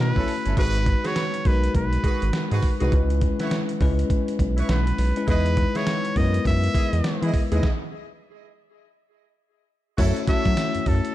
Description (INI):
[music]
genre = R&B, new jack swing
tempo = 102 BPM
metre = 4/4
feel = swing 62% on 16ths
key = F# dorian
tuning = A4 = 441 Hz
[part]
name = trumpet with straight mute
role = melody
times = 0.0-11.1 s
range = A4 to E5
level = -29 LUFS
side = right 1 dB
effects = none
[part]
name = bell-like tine electric piano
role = accompaniment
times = 0.0-11.1 s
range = G#3 to C#5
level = -27 LUFS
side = left 5 dB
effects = none
[part]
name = round analog bass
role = bass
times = 0.0-11.0 s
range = G1 to F#3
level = -22 LUFS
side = right 1 dB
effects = none
[part]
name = clear horn section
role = stabs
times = 0.2-10.5 s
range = C#4 to D#5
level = -33 LUFS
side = right 3 dB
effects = ping-pong delay
[part]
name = dusty soul sampler-style drum kit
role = drums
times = 0.2-11.1 s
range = crash cymbal, hi-hat, kick drum, snare drum, tambourine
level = -24 LUFS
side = right 1 dB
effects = none
[sound]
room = little or no reverb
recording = dark, warm production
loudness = -20 LUFS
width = side -14 dB against mid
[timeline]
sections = 0.6-10.0 A section; 10.0-11.1 B section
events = stop 7.6-10.0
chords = 0.0 B9sus4; 0.6 G#m7; 2.9 C#m7; 5.3 Emaj7; 10.0 F#m7